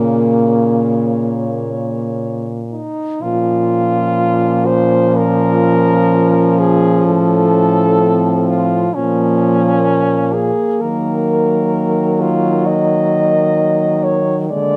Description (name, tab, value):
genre	classical, lyrical piece for horn quartet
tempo	64 BPM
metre	4/4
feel	uneven beats, rubato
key	Bb minor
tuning	A4 = 438 Hz
part	warm French horn	melody	0.0-14.8 s	Db4 to Eb5	-19 LUFS	equal	none
part	mellow French horn	second line	0.0-14.8 s	Bb3 to Db4	-22 LUFS	equal	none
part	warm French horn	accompaniment	0.0-14.8 s	Db3 to Ab3	-20 LUFS	equal	none
part	warm French horn	bass	0.0-14.8 s	A2 to Eb3	-21 LUFS	equal	none
room	light reverb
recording	close, detailed microphones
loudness	-15 LUFS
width	mono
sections	0.0-3.2 A section; 3.2-14.8 B section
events	none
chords	0.0 Bbm; 7.0 F/A; 8.9 Bbm; 10.8 Ebm